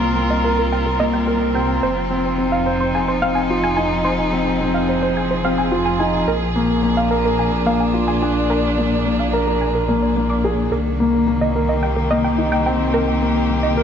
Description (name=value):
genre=piano and strings electronica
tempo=108 BPM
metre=4/4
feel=straight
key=C minor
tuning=A4 = 440 Hz
part: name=dark string quartet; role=sustained chords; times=0.0-13.8 s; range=Eb3 to Bb4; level=-22 LUFS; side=equal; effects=none
part: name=dark concert grand piano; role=riff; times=0.0-13.8 s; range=Bb3 to C5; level=-20 LUFS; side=left 1 dB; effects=digital delay
part: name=dark detuned saw bass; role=bass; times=0.0-13.8 s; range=F1 to C2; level=-24 LUFS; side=right 1 dB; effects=none
part: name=warbly dusty pluck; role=arpeggios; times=0.3-13.7 s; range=Bb4 to D6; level=-24 LUFS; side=right 1 dB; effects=chorus, digital delay
room=moderate recital hall reverb, RT60 1.7 s, studio reverb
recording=nothing above 7.8 kHz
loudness=-16 LUFS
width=side -8 dB against mid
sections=0.0-13.8 A section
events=none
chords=0.0 Cm7; 1.8 Fm7; 6.3 Bb7; 10.7 Cm7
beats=0.16 0.72 1.27 | 1.83 2.38 2.94 3.50 | 4.05 4.61 5.16 5.72 | 6.27 6.83 7.38 7.94 | 8.50 9.05 9.61 10.16 | 10.72 11.27 11.83 12.38 | 12.94 13.50